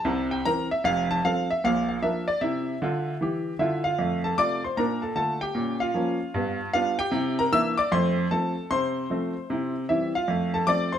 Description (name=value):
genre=jazz, stride piano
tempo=152 BPM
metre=4/4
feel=swing 65% on 8ths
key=F major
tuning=A4 = 440 Hz
part: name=bright baby grand piano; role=solo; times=0.0-11.0 s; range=F1 to E6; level=-23 LUFS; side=equal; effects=none
room=moderate stone room reverb, RT60 1.1 s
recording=band playing live in one room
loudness=-23 LUFS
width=side -9 dB against mid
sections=0.0-4.0 A section; 4.0-11.0 B section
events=none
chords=0.1 C7; 0.8 F; 1.6 Bb; 2.4 C; 4.0 F; 4.8 Bbmaj7; 5.6 Bbm; 6.3 G7; 7.1 C9; 7.9 F; 8.7 F/C; 9.5 C; 10.3 F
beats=0.06 0.45 | 0.84 1.24 1.63 2.02 | 2.41 2.81 3.20 3.59 | 3.99 4.38 4.77 5.17 | 5.56 5.95 6.35 6.74 | 7.14 7.53 7.92 8.32 | 8.71 9.11 9.50 9.90 | 10.29 10.69